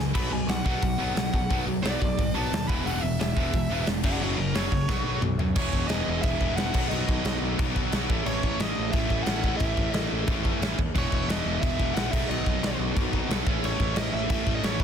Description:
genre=punk rock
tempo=178 BPM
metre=4/4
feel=straight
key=unclear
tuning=A4 = 443 Hz
part: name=distorted electric guitar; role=riff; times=0.0-14.8 s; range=E2 to B3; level=-32 LUFS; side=left 13 dB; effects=overdrive
part: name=distorted electric guitar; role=riff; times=0.0-14.8 s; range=F#2 to G#4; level=-31 LUFS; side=right 15 dB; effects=overdrive
part: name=overdriven picked electric bass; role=bass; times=0.0-14.8 s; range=E1 to F#2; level=-31 LUFS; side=equal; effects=none
part: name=biting overdriven guitar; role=melody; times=0.2-14.8 s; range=F#4 to B5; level=-33 LUFS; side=right 1 dB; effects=ping-pong delay
part: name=big rock drum kit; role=drums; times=0.2-14.8 s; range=crash cymbal, hi-hat, kick drum, snare drum, toms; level=-28 LUFS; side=equal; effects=none
room=little or no reverb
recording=dense, heavily limited modern master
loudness=-24 LUFS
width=side -8 dB against mid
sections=0.0-5.6 A section; 5.6-14.8 B section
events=drum fill 0.0, 4.9-5.6; overdriven electric guitar solo 0.0-5.6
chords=0.2 B5; 2.7 E; 4.0 F#; 4.9 B5; 5.6 E; 6.8 B; 8.1 A; 11.0 E; 12.1 B; 13.5 A

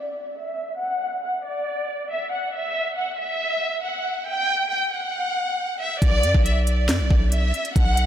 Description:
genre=hip hop, drill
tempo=138 BPM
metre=4/4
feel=half-time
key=B minor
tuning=A4 = 439 Hz
part: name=rich studio violin section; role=melody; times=0.0-8.1 s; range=D5 to G5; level=-24 LUFS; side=equal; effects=low-pass filter, tape echo
part: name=distorted 808-style bass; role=bass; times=6.0-8.1 s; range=B1 to F#2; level=-20 LUFS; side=equal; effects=distortion
part: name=drill drum kit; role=drums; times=6.0-8.1 s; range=handclaps, hi-hat, kick drum, snare drum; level=-21 LUFS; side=equal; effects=none
room=moderate huge ambient reverb, RT60 4.6 s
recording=dreamy mix soaked in reverb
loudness=-21 LUFS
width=side -10 dB against mid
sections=0.0-6.0 A section; 6.0-8.1 B section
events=filter sweep on violin section 0.0-6.0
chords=0.0 N.C.; 6.0 Bm

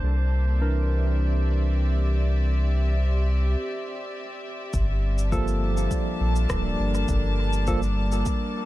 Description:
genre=ambient dub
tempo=102 BPM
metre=4/4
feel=straight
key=G dorian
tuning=A4 = 439 Hz
part: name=warm studio string section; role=sustained chords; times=0.0-8.7 s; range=G3 to A5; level=-31 LUFS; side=equal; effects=low-pass filter
part: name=warm sub bass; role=bass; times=0.0-8.2 s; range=D1 to C2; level=-22 LUFS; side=equal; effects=none
part: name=drifting glass-harmonics texture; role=texture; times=0.0-8.7 s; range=C5 to D5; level=-41 LUFS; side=left 1 dB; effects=chorus, built-in reverb
part: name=barky tine electric piano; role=stabs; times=0.6-7.8 s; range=E3 to Bb4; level=-31 LUFS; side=right 2 dB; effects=auto-pan, dub echo
part: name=electronic kick drum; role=drums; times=4.7-8.4 s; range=none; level=-28 LUFS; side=equal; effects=none
part: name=electronic shaker and rim click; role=drums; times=4.7-8.4 s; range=none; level=-38 LUFS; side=left 1 dB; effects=dub echo
room=little or no reverb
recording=none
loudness=-22 LUFS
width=side -16 dB against mid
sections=0.0-4.7 A section; 4.7-8.7 B section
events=break 3.6-4.7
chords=0.0 C9; 4.7 Gm9

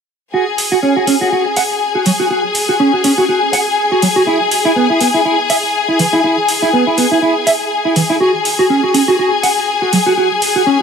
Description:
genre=nu-disco, nu disco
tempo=122 BPM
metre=4/4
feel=swing 56% on 16ths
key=unclear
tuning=A4 = 441 Hz
part: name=bright studio string section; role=sustained chords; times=0.3-10.8 s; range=G#4 to G#5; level=-15 LUFS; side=left 4 dB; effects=none
part: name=mellow electric guitar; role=riff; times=0.3-10.8 s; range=E3 to F#5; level=-14 LUFS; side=right 2 dB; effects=lush chorus, low-pass filter, digital delay
part: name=electronic hi-hat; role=drums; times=0.6-10.5 s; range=none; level=-20 LUFS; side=right 1 dB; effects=overdrive
room=moderate lush hall reverb, RT60 2.0 s, digital ambience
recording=none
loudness=-11 LUFS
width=side -6 dB against mid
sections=0.3-10.8 A section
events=none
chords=0.3 F#5; 4.3 E; 8.2 F#5

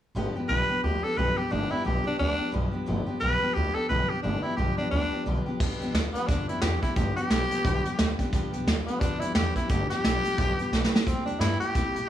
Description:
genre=rockabilly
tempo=176 BPM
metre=4/4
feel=swing 59% on 8ths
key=G mixolydian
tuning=A4 = 440 Hz
part: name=picked steel-string acoustic guitar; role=accompaniment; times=0.1-12.1 s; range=G2 to G4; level=-32 LUFS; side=left 2 dB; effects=none
part: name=upright bass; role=bass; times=0.1-12.1 s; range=G1 to Bb2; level=-30 LUFS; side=equal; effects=none
part: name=growling tenor saxophone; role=melody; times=0.5-12.1 s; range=B3 to B4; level=-28 LUFS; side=left 1 dB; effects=none
part: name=vintage brush drum kit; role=drums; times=5.6-12.0 s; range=crash cymbal, hi-hat, kick drum, snare drum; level=-27 LUFS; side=right 1 dB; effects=none
room=light reverb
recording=small room reverb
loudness=-24 LUFS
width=side -11 dB against mid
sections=0.2-5.6 A section; 5.6-12.1 B section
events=drum fill 10.7-11.1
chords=0.2 G7; 11.1 C7

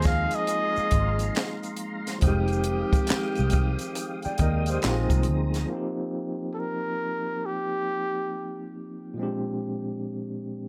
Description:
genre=R&B, neo-soul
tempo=69 BPM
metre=4/4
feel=swing 63% on 16ths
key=Eb major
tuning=A4 = 441 Hz
part: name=breathy trumpet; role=melody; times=0.0-8.8 s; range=G4 to F5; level=-30 LUFS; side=equal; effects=none
part: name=overdriven tine electric piano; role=accompaniment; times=0.0-10.7 s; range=Bb2 to G5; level=-34 LUFS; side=equal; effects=fast tremolo
part: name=tonewheel organ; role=sustained chords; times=0.0-5.7 s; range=Ab3 to Eb6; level=-37 LUFS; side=equal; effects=chorus vibrato, slow rotary speaker
part: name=warm horn section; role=stabs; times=0.0-5.3 s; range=C3 to Ab4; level=-36 LUFS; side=equal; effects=none
part: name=vintage muted fingered electric bass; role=bass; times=0.0-5.6 s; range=F1 to Eb2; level=-28 LUFS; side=equal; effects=none
part: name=compact cocktail drum kit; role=drums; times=0.0-5.7 s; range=handclaps, hi-hat, kick drum, snare drum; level=-28 LUFS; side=equal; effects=none
part: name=egg shaker and finger snaps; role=percussion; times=0.0-5.7 s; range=none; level=-44 LUFS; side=equal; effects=none
room=light reverb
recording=none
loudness=-27 LUFS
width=mono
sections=0.0-5.7 A section; 5.7-10.7 B section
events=none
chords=0.0 Ab69; 2.2 Fm9; 4.8 Bb9sus4; 5.7 Eb6; 9.2 Bb13

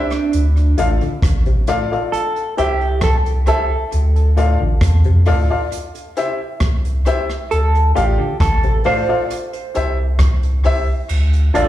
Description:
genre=roots reggae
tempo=67 BPM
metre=4/4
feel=straight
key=D minor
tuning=A4 = 441 Hz
part: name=mellow electric guitar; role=accompaniment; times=0.0-11.7 s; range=D4 to D5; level=-21 LUFS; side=right 4 dB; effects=phaser, tape echo, slapback echo
part: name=dark upright piano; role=stabs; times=0.0-11.7 s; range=E4 to F5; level=-22 LUFS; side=left 4 dB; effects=tube saturation, slapback echo
part: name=jazz brush drum kit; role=drums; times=0.1-11.7 s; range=crash cymbal, hi-hat, kick drum, rim click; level=-20 LUFS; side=equal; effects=none
part: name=soft dub sub bass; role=bass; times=0.3-11.7 s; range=A1 to F2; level=-15 LUFS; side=equal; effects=none
part: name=muted clav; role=arpeggios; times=0.8-11.7 s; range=A2 to D3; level=-25 LUFS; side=left 4 dB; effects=phaser, slapback echo
room=studio reverb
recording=live gig heard through the venue's PA, club reverb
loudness=-14 LUFS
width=side -13 dB against mid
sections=0.0-11.1 A section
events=clean electric guitar solo 0.0-11.1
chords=0.3 Dm; 2.1 C; 3.9 Dm; 5.7 C; 7.5 Dm; 9.3 C; 11.1 Dm

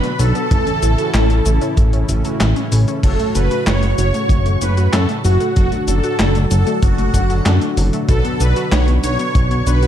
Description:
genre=synthwave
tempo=95 BPM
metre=4/4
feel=straight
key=unclear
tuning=A4 = 440 Hz
part: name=soft supersaw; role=melody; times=0.0-9.9 s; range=F#4 to C#5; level=-22 LUFS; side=equal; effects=phaser, digital delay
part: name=string machine, violins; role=second line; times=0.0-9.9 s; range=F#5 to C#6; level=-29 LUFS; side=equal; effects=ensemble chorus, digital delay
part: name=warm analog pad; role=sustained chords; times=0.0-9.9 s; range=A2 to F#4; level=-25 LUFS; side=left 2 dB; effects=lush chorus, sidechain pumping
part: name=analog pluck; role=arpeggios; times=0.0-9.9 s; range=F#3 to A4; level=-26 LUFS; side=left 4 dB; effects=chorus, digital delay
part: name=analog synth brass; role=stabs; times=0.0-9.9 s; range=A2 to C#5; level=-26 LUFS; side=right 5 dB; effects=chorus, digital delay
part: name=gated 80s digital drum machine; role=drums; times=0.0-9.9 s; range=cabasa, crash cymbal, handclaps, hi-hat, snare drum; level=-22 LUFS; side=equal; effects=gated reverb, gated reverb snare
part: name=chorused synth bass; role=bass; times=0.2-9.9 s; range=F#1 to F#2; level=-16 LUFS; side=equal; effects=none
part: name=kick drum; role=drums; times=0.5-9.5 s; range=none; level=-17 LUFS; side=equal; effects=none
room=digital ambience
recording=dark, warm production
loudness=-13 LUFS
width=side -10 dB against mid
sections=0.0-9.9 A section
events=none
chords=0.0 D; 0.5 A; 3.0 F#m; 5.6 D/F#

